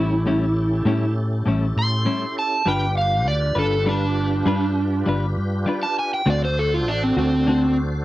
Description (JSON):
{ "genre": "slow blues", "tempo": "67 BPM (dotted quarters)", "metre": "12/8", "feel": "straight", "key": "unclear", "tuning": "A4 = 437 Hz", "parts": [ { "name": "overdriven slide guitar", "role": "melody", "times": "0.0-7.8 s", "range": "C4 to C6", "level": "-22 LUFS", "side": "right 1 dB", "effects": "cassette tape" }, { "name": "clean electric guitar", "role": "accompaniment", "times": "0.0-7.7 s", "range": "A2 to B4", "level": "-23 LUFS", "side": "left 2 dB", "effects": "tremolo, cassette tape" }, { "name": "tonewheel organ", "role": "sustained chords", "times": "0.0-8.0 s", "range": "C#4 to C5", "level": "-30 LUFS", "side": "equal", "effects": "overdrive, chorus vibrato, slow rotary speaker, cassette tape" }, { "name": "fretless electric bass", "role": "bass", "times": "0.0-8.0 s", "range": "G1 to A2", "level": "-22 LUFS", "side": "equal", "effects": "none" } ], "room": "light reverb", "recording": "home recording on cassette", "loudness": "-18 LUFS", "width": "side -16 dB against mid", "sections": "0.0-8.0 A section", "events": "electric slide guitar solo 0.0-8.0", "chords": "0.0 A7; 2.7 G7; 6.3 D7" }